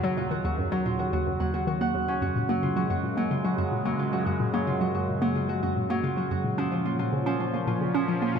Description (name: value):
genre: ambient, sequencer-driven space music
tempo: 110 BPM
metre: 4/4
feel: straight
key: Gb major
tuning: A4 = 442 Hz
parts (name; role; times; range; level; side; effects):
- sweeping resonant pad; sustained chords; 0.0-8.4 s; Eb2 to Db4; -30 LUFS; equal; chorus
- Celtic harp; arpeggios; 0.0-8.4 s; F3 to Gb5; -30 LUFS; equal; auto-pan, ping-pong delay
- hollow square pluck; riff; 0.0-8.4 s; Eb2 to Db4; -28 LUFS; equal; chorus, ping-pong delay
room: wet cathedral reverb, RT60 6.6 s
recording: in a vast, echoing space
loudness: -24 LUFS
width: side -7 dB against mid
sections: 0.0-8.4 A section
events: filter sweep on harp 0.0-8.4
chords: 0.0 Ebm7; 2.2 Gbsus2; 6.6 Bbm